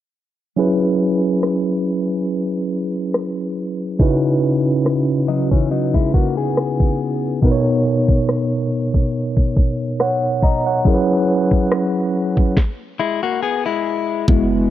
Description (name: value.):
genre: contemporary R&B.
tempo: 70 BPM.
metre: 4/4.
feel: swing 54% on 16ths.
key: unclear.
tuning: A4 = 439 Hz.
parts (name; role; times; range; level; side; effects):
tine electric piano; accompaniment; 0.6-14.7 s; B2 to A#5; -17 LUFS; equal; medium stereo tremolo.
trap drum kit; drums; 1.4-14.5 s; kick drum, rim click, snare drum; -16 LUFS; equal; cassette tape.
direct-recorded clean electric guitar; arpeggios; 5.3-7.4, 13.0-14.3 s; E3 to G#4; -21 LUFS; left 8 dB; tape echo.
chorused pulse-width pad; sustained chords; 14.3-14.7 s; E3 to F#4; -22 LUFS; right 1 dB; none.
clean 808-style bass; bass; 14.3-14.7 s; F#1; -21 LUFS; equal; none.
room: little or no reverb.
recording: home recording on cassette, low-pass filter.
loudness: -16 LUFS.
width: side -12 dB against mid.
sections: 0.6-14.3 A section.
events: filter sweep 0.6-14.3; stop 12.6-14.3.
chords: 0.6 F#9sus4; 4.0 C#m11; 7.4 Bmaj9; 10.9 F#9sus4.